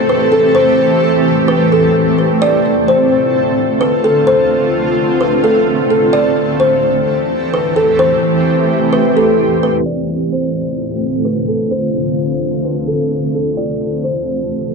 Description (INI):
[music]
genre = hip hop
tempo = 129 BPM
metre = 4/4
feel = half-time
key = D dorian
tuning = A4 = 440 Hz
[part]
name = granular cloud pad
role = sustained chords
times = 0.0-14.7 s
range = D3 to C5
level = -14 LUFS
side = right 1 dB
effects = built-in reverb
[part]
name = kalimba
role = melody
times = 0.1-14.5 s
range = A4 to D5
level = -14 LUFS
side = left 1 dB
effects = tape echo
[sound]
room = light reverb, small room ambience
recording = dark, warm production, low-pass filter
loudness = -11 LUFS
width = side -4 dB against mid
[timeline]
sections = 0.0-9.9 A section; 9.9-14.7 B section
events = filter sweep 9.9-14.7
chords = 0.0 Am7; 2.4 Dm7; 6.1 Am7; 9.9 Dm7; 13.6 Am7